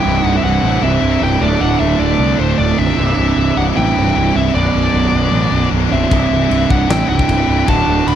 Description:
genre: heavy metal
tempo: 153 BPM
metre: 4/4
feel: straight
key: unclear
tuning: A4 = 440 Hz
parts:
  - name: high-gain lead guitar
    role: melody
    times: 0.0-8.2 s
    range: C5 to B5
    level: -19 LUFS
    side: left 2 dB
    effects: distortion
  - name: smooth overdriven lead guitar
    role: second line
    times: 0.0-8.2 s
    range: A3 to F#4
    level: -22 LUFS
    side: right 2 dB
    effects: none
  - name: distorted electric guitar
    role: riff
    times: 0.0-8.2 s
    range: B1 to D3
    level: -18 LUFS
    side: right 10 dB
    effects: distortion
  - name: high-gain distorted guitar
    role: riff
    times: 0.0-8.2 s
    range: E3 to E4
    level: -22 LUFS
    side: left 21 dB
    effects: distortion
  - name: fuzz picked electric bass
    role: bass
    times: 0.1-8.2 s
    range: B0 to C2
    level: -17 LUFS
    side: left 1 dB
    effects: overdrive
  - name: tight metal drum kit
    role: drums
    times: 6.1-8.2 s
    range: crash cymbal, kick drum, snare drum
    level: -19 LUFS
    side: left 1 dB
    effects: none
room: little or no reverb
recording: dry, close 1970s-style studio recording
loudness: -12 LUFS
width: side -10 dB against mid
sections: 0.0-8.2 A section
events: none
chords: 0.0 C; 1.4 D5; 3.0 C; 4.5 Bm; 6.1 C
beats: 0.24 0.63 1.02 | 1.42 1.81 2.20 2.59 | 2.98 3.37 3.76 4.15 | 4.54 4.93 5.33 5.72 | 6.11 6.50 6.89 7.29 | 7.68 8.07

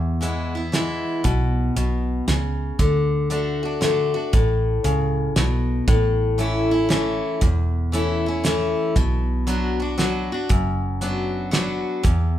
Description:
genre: honky-tonk and classic country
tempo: 117 BPM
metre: 3/4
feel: swing 65% on 8ths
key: A major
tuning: A4 = 440 Hz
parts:
  - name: picked steel-string acoustic guitar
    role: accompaniment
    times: 0.0-12.4 s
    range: E2 to F#4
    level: -22 LUFS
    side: left 2 dB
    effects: none
  - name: vintage muted fingered electric bass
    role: bass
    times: 0.0-12.4 s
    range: E1 to E2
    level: -24 LUFS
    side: right 1 dB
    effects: none
  - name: cloth-damped thuddy drum kit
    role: drums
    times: 0.2-12.2 s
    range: hi-hat, kick drum, snare drum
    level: -22 LUFS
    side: right 1 dB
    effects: none
room: light reverb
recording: band playing live in one room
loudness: -19 LUFS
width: side -12 dB against mid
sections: 0.0-5.9 A section; 5.9-12.4 A section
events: none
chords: 0.0 E; 2.8 D; 5.9 A; 9.0 Bm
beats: 0.22 0.74 | 1.25 1.76 2.28 | 2.79 3.31 3.82 | 4.33 4.85 5.36 | 5.88 6.39 6.90 | 7.42 7.93 8.44 | 8.96 9.47 9.99 | 10.50 11.01 11.53 | 12.04

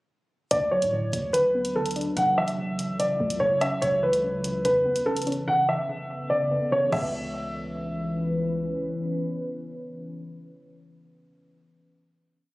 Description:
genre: hip hop, drill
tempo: 145 BPM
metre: 4/4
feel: half-time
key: C# phrygian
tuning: A4 = 443 Hz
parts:
  - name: dark baby grand piano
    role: melody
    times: 0.5-8.3 s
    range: A4 to F#5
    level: -24 LUFS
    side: equal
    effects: low-pass filter
  - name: warbly dusty pluck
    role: accompaniment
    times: 0.5-11.9 s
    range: C#3 to D4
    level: -33 LUFS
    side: equal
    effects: chorus, low-pass filter
  - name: deep dark ambient pad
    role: sustained chords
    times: 1.2-11.2 s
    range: C#3 to B4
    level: -32 LUFS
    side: equal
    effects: chorus, built-in reverb
  - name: long sustained 808-style bass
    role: bass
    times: 0.5-8.7 s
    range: F#1 to A2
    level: -37 LUFS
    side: equal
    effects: none
  - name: drill drum kit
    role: drums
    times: 0.5-7.0 s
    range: crash cymbal, hi-hat, kick drum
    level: -34 LUFS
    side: equal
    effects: none
room: light reverb, digital ambience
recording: recorded on a phone in the room, club reverb, compression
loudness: -23 LUFS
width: side -20 dB against mid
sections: 0.5-7.1 breakdown; 7.1-10.4 final hit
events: drums muted 5.5-7.1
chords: 0.5 D6; 2.2 F#m7; 3.8 C#m7; 5.5 Aadd9; 6.9 C#m7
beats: | 0.51 0.93 1.34 1.75 | 2.17 2.58 2.99 3.41 | 3.82 4.24 4.65 5.06 | 5.48 5.89 6.30 6.72 | 7.13 7.54 7.96 8.37 | 8.79 9.20 9.61 10.03

